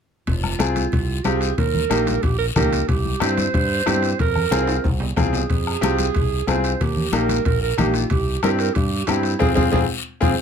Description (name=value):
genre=latin, cumbia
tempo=184 BPM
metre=4/4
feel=straight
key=F minor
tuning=A4 = 437 Hz
part: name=warm clarinet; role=second line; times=0.3-10.3 s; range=E4 to C5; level=-25 LUFS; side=right 9 dB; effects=none
part: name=modern bright fingered electric bass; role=bass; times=0.3-10.3 s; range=F1 to G2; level=-24 LUFS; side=equal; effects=none
part: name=bombo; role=percussion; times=0.3-10.3 s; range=none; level=-24 LUFS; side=left 2 dB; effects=none
part: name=congas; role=percussion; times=0.3-10.3 s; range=none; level=-27 LUFS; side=left 3 dB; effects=none
part: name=guiro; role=percussion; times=0.3-10.3 s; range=none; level=-32 LUFS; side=left 7 dB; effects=none
part: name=timbales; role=percussion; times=0.3-10.3 s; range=none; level=-32 LUFS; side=right 7 dB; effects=none
part: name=bright upright piano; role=accompaniment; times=0.6-10.3 s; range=Bb3 to Ab4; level=-22 LUFS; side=left 3 dB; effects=none
room=light reverb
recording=none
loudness=-18 LUFS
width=side -7 dB against mid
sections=0.3-10.4 A section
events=drum fill 4.5-5.5, 10.2; band accent 9.4-10.4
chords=0.3 Fm; 1.6 Eb; 2.9 C; 4.2 Fm; 6.8 Eb; 8.1 C; 9.4 Fm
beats=| 0.27 0.60 0.93 1.25 | 1.58 1.91 2.23 2.56 | 2.88 3.21 3.54 3.86 | 4.19 4.52 4.84 5.17 | 5.50 5.82 6.15 6.47 | 6.80 7.13 7.45 7.78 | 8.10 8.43 8.76 9.08 | 9.41 9.73 10.06